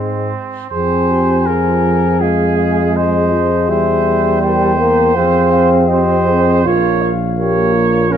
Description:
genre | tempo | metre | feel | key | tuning
classical, brass quintet | 81 BPM | 4/4 | rubato | F minor | A4 = 439 Hz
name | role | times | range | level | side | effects
dark trumpet | melody | 0.0-8.2 s | C5 to Ab5 | -20 LUFS | left 11 dB | none
clear trumpet | second line | 0.0-8.2 s | C4 to Db5 | -20 LUFS | right 6 dB | none
clear trombone | accompaniment | 0.0-8.2 s | F3 to F4 | -17 LUFS | right 2 dB | none
warm French horn | accompaniment | 0.0-8.2 s | Ab3 to Bb4 | -20 LUFS | left 5 dB | none
mellow tuba | bass | 0.0-8.2 s | Bb1 to Ab2 | -17 LUFS | right 3 dB | none
room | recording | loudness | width
moderate recital hall reverb, RT60 1.4 s | dark, warm production | -11 LUFS | side -9 dB against mid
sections
0.7-8.2 A section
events
none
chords
0.0 Ab; 0.7 Fm; 3.7 C/E; 5.2 Fm; 6.7 Bbm

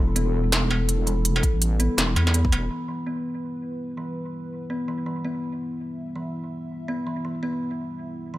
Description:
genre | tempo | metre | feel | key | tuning
half-time drum and bass | 165 BPM | 4/4 | swing 59% on 16ths, half-time | E minor | A4 = 440 Hz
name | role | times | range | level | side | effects
dark analog pad | sustained chords | 0.0-8.4 s | G3 to E5 | -35 LUFS | left 2 dB | chorus, sidechain pumping
kalimba | arpeggios | 0.0-8.4 s | E3 to B3 | -29 LUFS | equal | low-pass filter, dub echo
deep soft wobble bass | bass | 0.0-2.7 s | E1 to E2 | -22 LUFS | equal | chorus
industrial drum kit | drums | 0.2-2.6 s | hi-hat, snare drum, struck metal | -24 LUFS | equal | overdrive, studio reverb
electronic kick drum | drums | 1.4-2.5 s | none | -22 LUFS | equal | studio reverb
room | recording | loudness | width
little or no reverb | none | -23 LUFS | side -16 dB against mid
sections
0.0-2.7 A section; 2.7-8.4 B section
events
drop 0.0-2.7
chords
0.0 Em

